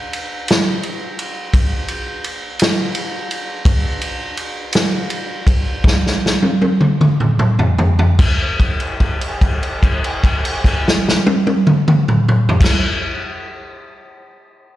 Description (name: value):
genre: blues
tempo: 49-57 BPM (dotted quarters)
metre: 12/8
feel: straight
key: none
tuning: none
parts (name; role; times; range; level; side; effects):
- vintage drum kit; drums; 0.1-12.8 s; crash cymbal, kick drum, ride cymbal, snare drum, toms; -14 LUFS; equal; none
room: little or no reverb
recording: live gig heard through the venue's PA, recital hall reverb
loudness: -14 LUFS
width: side -14 dB against mid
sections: 0.0-8.2 A section; 8.2-13.1 B section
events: slowing down 2.2-8.2; drum fill 5.8-8.2; held note 8.2-12.6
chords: none